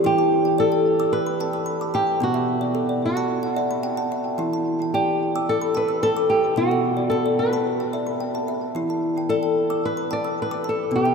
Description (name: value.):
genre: world meditative, meditative tuned percussion.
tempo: 110 BPM.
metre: 4/4.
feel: straight.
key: E minor.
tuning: A4 = 442 Hz.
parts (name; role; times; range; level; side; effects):
kalimba; arpeggios; 0.0-11.1 s; B2 to E6; -23 LUFS; equal; tape echo.
flamenco guitar; melody; 0.1-11.1 s; F#4 to D5; -22 LUFS; equal; tape echo.
room: wet cathedral reverb, RT60 5.9 s.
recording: in a vast, echoing space.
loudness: -20 LUFS.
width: side -5 dB against mid.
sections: 0.0-11.1 A section.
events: none.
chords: 0.0 Em; 2.2 Bm; 4.4 Em; 6.6 Bm; 8.7 Em.